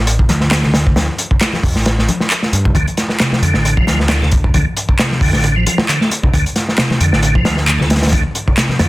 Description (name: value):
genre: breakbeat, breaks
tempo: 134 BPM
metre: 4/4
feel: swing 55% on 16ths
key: D minor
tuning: A4 = 440 Hz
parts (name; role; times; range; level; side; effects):
- overdriven picked electric bass; bass; 0.0-8.9 s; A1 to G2; -16 LUFS; equal; tube saturation
- crunchy breakbeat drum kit; drums; 0.1-8.9 s; hi-hat, kick drum, snare drum; -15 LUFS; equal; none
- congas; percussion; 0.3-8.8 s; none; -24 LUFS; left 2 dB; none
- electronic handclaps; drums; 0.5-8.7 s; none; -18 LUFS; equal; overdrive
- tonewheel organ; riff; 2.8-8.9 s; C3 to A3; -18 LUFS; equal; overdrive, chorus vibrato, fast rotary speaker, tube saturation, vintage 12-bit sampler grit, digital delay
room: light reverb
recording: dense, heavily limited modern master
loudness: -12 LUFS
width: side -18 dB against mid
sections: 0.0-8.9 A section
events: none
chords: 0.0 Dm7